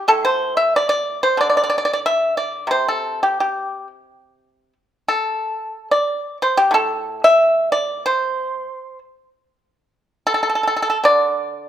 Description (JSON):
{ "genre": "chinese traditional, Chinese solo plucked strings", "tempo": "91 BPM", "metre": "4/4", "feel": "uneven beats, rubato", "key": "D shang mode", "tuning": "A4 = 440 Hz", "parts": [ { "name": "pipa", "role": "solo", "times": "0.0-11.7 s", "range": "A2 to E5", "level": "-16 LUFS", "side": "equal", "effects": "none" } ], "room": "moderate large studio reverb, RT60 1.2 s", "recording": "band playing live in one room", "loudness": "-16 LUFS", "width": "side -10 dB against mid", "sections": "0.0-11.7 A section", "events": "none", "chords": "none" }